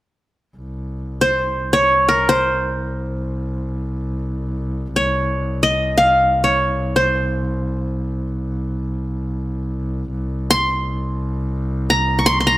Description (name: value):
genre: arabic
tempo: free time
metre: none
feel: none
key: C maqam kurd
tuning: A4 = 441 Hz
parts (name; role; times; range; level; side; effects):
- bright double bass; drone; 0.6-12.6 s; C2; -23 LUFS; equal; none
- qanun; melody; 1.2-12.6 s; Bb4 to Db6; -16 LUFS; equal; none
room: moderate recital hall reverb, RT60 1.3 s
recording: close, detailed microphones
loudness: -17 LUFS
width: side -16 dB against mid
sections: 0.5-12.6 A section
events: none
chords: none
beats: free time